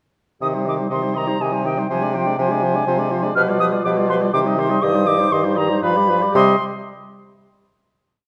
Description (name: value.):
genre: quick classical-period movement for wind quintet.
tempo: 122 BPM.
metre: 3/4.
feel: straight.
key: C minor.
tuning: A4 = 444 Hz.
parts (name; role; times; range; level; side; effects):
silver concert flute; melody; 0.4-6.6 s; G5 to F6; -24 LUFS; equal; none.
warm oboe; second line; 0.4-6.6 s; B4 to Eb5; -28 LUFS; equal; none.
clear French horn; accompaniment; 0.4-6.6 s; Eb3 to Ab3; -26 LUFS; equal; none.
warm clarinet; accompaniment; 0.4-6.6 s; D4 to G4; -27 LUFS; equal; none.
clear bassoon; bass; 0.4-6.6 s; G2 to C3; -24 LUFS; equal; none.
room: wet recital hall reverb, RT60 1.5 s.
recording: none.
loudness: -19 LUFS.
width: mono.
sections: 0.4-6.3 A section; 6.3-7.9 final chord.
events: none.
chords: 0.4 Cm; 1.9 Dm7b5/C; 3.4 G7/B; 4.3 Cm; 4.8 Cm/G; 5.8 G7; 6.3 C5.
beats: | 0.42 0.92 1.41 | 1.90 2.39 2.88 | 3.37 3.85 4.34 | 4.83 5.32 5.83 | 6.35.